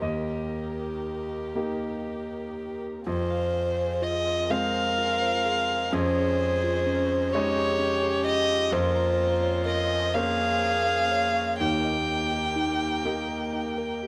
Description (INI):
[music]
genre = neoclassical piano and strings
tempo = 39-44 BPM (dotted quarters)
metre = 6/8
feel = rubato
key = F minor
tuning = A4 = 440 Hz
[part]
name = dark violin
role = melody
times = 0.0-14.0 s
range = G4 to G5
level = -29 LUFS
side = equal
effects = none
[part]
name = clear concert grand piano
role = accompaniment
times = 0.0-14.1 s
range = Eb2 to Eb5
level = -33 LUFS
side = equal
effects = none
[part]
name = warm chamber string section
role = sustained chords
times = 0.0-14.1 s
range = Ab3 to C5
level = -42 LUFS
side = equal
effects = none
[part]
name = harp-like synth pluck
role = arpeggios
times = 3.1-14.1 s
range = Db4 to Bb5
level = -35 LUFS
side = equal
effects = chorus, slapback echo
[part]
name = rich viola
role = accompaniment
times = 4.5-13.8 s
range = F4 to Bb4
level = -34 LUFS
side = equal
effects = none
[sound]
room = moderate echo chamber reverb, RT60 1.9 s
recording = none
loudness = -26 LUFS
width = mono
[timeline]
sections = 0.0-3.1 A section; 3.1-14.1 A section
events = none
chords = 0.0 Eb; 3.1 Fm; 5.9 Dbadd9/F; 8.7 Bbmadd9/F; 11.6 Eb